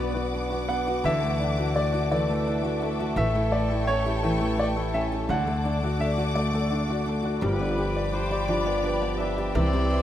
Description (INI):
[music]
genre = pop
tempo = 56 BPM (dotted quarters)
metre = 6/8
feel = straight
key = G major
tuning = A4 = 440 Hz
[part]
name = clear baby grand piano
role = melody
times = 0.0-7.1 s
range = C#5 to F#5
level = -30 LUFS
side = equal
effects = none
[part]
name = clear baby grand piano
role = accompaniment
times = 0.0-10.0 s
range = C3 to D5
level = -30 LUFS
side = left 3 dB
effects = none
[part]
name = warm studio string section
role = sustained chords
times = 0.0-10.0 s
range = F4 to E6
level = -32 LUFS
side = left 2 dB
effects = none
[part]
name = fingerpicked steel-string acoustic guitar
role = arpeggios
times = 0.0-10.0 s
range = E3 to G4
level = -30 LUFS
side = right 2 dB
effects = slapback echo
[part]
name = upright bass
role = bass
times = 0.0-10.0 s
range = G1 to D2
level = -29 LUFS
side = equal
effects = none
[part]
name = clear trumpet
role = second line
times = 7.4-10.0 s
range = B4 to E5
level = -33 LUFS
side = left 2 dB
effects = none
[sound]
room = moderate lush hall reverb, RT60 2.4 s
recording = rough home demo mix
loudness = -23 LUFS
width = side -11 dB against mid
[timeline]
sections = 0.0-10.0 A section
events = none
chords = 0.0 Bm; 1.0 Dadd9; 3.2 A7; 5.3 D; 7.4 G7